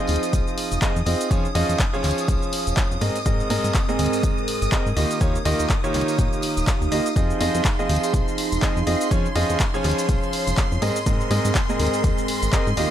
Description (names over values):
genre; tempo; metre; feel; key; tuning
piano house; 123 BPM; 4/4; swing 58% on 16ths; unclear; A4 = 436 Hz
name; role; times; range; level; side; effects
string machine, violins; sustained chords; 0.0-12.9 s; C6 to Eb6; -31 LUFS; equal; ensemble chorus, sidechain pumping
clear concert grand piano; riff; 0.0-12.9 s; Ab2 to Eb5; -24 LUFS; right 1 dB; sidechain pumping, ping-pong delay
warbly tape-like pad; texture; 0.0-12.9 s; C4 to Ab5; -30 LUFS; right 2 dB; chorus, built-in reverb, sidechain pumping
plucky analog bass; bass; 0.1-12.9 s; Eb1 to Ab2; -24 LUFS; equal; sidechain pumping
punchy analog drum machine; drums; 0.1-12.9 s; cabasa, handclaps, hi-hat; -28 LUFS; left 1 dB; none
tambourine; percussion; 0.1-12.9 s; none; -37 LUFS; right 4 dB; none
electronic kick drum; drums; 0.3-12.6 s; none; -23 LUFS; equal; none
room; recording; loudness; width
little or no reverb; none; -19 LUFS; side -10 dB against mid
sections
0.0-12.9 A section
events
none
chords
0.0 Fm7; 1.3 Dbadd9; 3.0 Abadd9; 5.0 Ebadd9; 7.2 Fm7; 9.1 Dbadd9; 10.8 Abadd9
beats
0.33 0.82 | 1.31 1.79 2.28 2.77 | 3.26 3.75 4.23 4.72 | 5.21 5.70 6.18 6.67 | 7.16 7.65 8.14 8.62 | 9.11 9.60 10.09 10.58 | 11.06 11.55 12.04 12.53